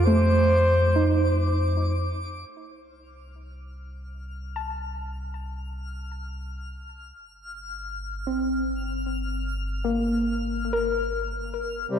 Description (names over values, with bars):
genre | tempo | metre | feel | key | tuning
ambient | free time | none | none | C dorian | A4 = 440 Hz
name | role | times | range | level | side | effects
mellow flugelhorn | melody | 0.0-1.7 s | C5 | -24 LUFS | equal | ping-pong delay
soft round pluck | arpeggios | 0.0-12.0 s | A3 to A5 | -27 LUFS | equal | chorus, vintage 12-bit sampler grit, ping-pong delay
warm sub bass | bass | 0.0-12.0 s | G1 to F2 | -28 LUFS | equal | none
twinkling granular texture | texture | 0.0-12.0 s | D6 to F6 | -37 LUFS | left 3 dB | built-in reverb
hand-pumped harmonium | drone | 11.9-12.0 s | C3 to G3 | -24 LUFS | left 1 dB | none
room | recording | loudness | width
wet lush hall reverb, RT60 2.8 s | dark, warm production | -23 LUFS | side -9 dB against mid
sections
0.0-2.5 A section; 2.5-11.9 B section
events
fade-in on sub bass 2.5-11.9; fade-in on synth texture 2.5-11.9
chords
0.0 F7; 2.5 Cm; 7.2 Gm7